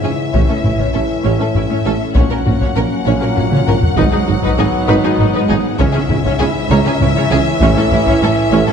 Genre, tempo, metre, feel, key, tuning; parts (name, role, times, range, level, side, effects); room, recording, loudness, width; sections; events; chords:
cinematic, hybrid orchestral and electronic film score; 66 BPM (dotted quarters); 6/8; straight; A4 = 439 Hz
clear symphonic violin section; melody; 0.0-8.7 s; E5 to F#5; -23 LUFS; left 4 dB
warm symphonic violin section; second line; 0.0-8.7 s; E4 to C#5; -23 LUFS; left 4 dB
warm symphonic viola section; accompaniment; 0.0-8.7 s; C#4 to D#4; -23 LUFS; right 1 dB
mellow trombone section; sustained chords; 0.0-8.7 s; G#2 to F#3; -23 LUFS; right 4 dB
warm French horn section; sustained chords; 0.0-8.7 s; A#3 to E4; -22 LUFS; left 4 dB
harp-like synth pluck; arpeggios; 0.0-8.7 s; C#3 to A4; -23 LUFS; left 2 dB; chorus, phaser, ping-pong delay
dark symphonic cello section; bass; 0.0-8.7 s; G#2 to C#3; -21 LUFS; right 3 dB
rich symphonic double bass section; bass; 0.0-8.6 s; G#1 to C#2; -20 LUFS; right 3 dB
warm tuba; bass; 0.0-8.6 s; G#1 to C#2; -22 LUFS; right 4 dB
felt-muted upright piano; texture; 0.0-8.7 s; A#5 to E6; -31 LUFS; left 4 dB
taiko ensemble; drums; 0.3-8.6 s; -18 LUFS; left 1 dB
wet concert hall reverb, RT60 2.0 s; dark, warm production; -12 LUFS; side -7 dB against mid
0.0-8.7 A section
drum fill 3.5-4.0
0.3 A; 2.2 F#/A#; 4.0 G#m7; 5.8 C#m; 7.6 A